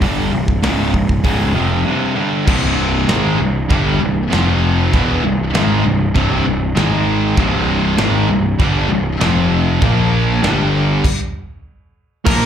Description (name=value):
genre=heavy metal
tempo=98 BPM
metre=4/4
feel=straight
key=unclear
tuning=A4 = 439 Hz
part: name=distorted electric guitar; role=riff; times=0.0-12.5 s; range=C2 to Bb3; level=-20 LUFS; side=right 10 dB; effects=overdrive
part: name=sludgy distorted guitar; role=riff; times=0.0-12.5 s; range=C2 to Bb3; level=-19 LUFS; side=left 8 dB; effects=overdrive
part: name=fuzz picked electric bass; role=bass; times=0.0-12.5 s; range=C1 to Bb1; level=-18 LUFS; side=equal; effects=overdrive
part: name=modern studio drum kit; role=drums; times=0.0-12.4 s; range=china cymbal, crash cymbal, hi-hat, kick drum, snare drum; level=-20 LUFS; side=equal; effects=none
part: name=heavy high-gain guitar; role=riff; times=2.5-12.5 s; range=C2 to Bb3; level=-23 LUFS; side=equal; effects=distortion, slapback echo
part: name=smooth overdriven lead guitar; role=melody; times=12.3-12.5 s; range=Bb4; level=-18 LUFS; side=left 1 dB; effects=none
room=little or no reverb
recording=live gig heard through the venue's PA, club reverb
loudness=-13 LUFS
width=side -9 dB against mid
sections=0.0-2.5 A section; 2.5-12.3 B section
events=break 1.9-2.5; stop 11.0-12.3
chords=0.0 C5; 4.3 F5; 4.9 C; 6.8 Ab5; 7.4 C5; 9.2 F5; 9.8 Bb5; 10.4 G5; 11.0 N.C.